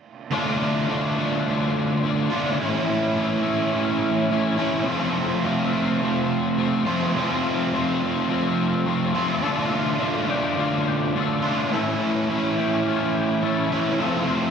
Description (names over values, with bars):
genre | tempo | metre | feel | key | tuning
rock | 105 BPM | 4/4 | straight | D minor | A4 = 439 Hz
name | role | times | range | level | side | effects
biting overdriven guitar | riff | 0.3-14.5 s | F2 to F4 | -23 LUFS | right 6 dB | reverse reverb
crunchy overdriven guitar | riff | 0.3-14.5 s | A2 to F4 | -24 LUFS | left 7 dB | ensemble chorus
twangy electric guitar | arpeggios | 9.4-14.5 s | F4 to A4 | -31 LUFS | left 6 dB | ensemble chorus, tape echo
room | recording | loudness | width
wet plate reverb, RT60 3.2 s | dreamy mix soaked in reverb | -20 LUFS | side -7 dB against mid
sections
0.3-14.5 A section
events
none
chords
0.3 Dm; 2.6 A; 4.9 F; 9.4 Dm; 11.7 A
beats
| 0.32 0.89 1.46 2.03 | 2.60 3.17 3.74 4.31 | 4.88 5.45 6.02 6.59 | 7.16 7.73 8.30 8.87 | 9.44 10.01 10.58 11.16 | 11.73 12.30 12.87 13.44 | 14.02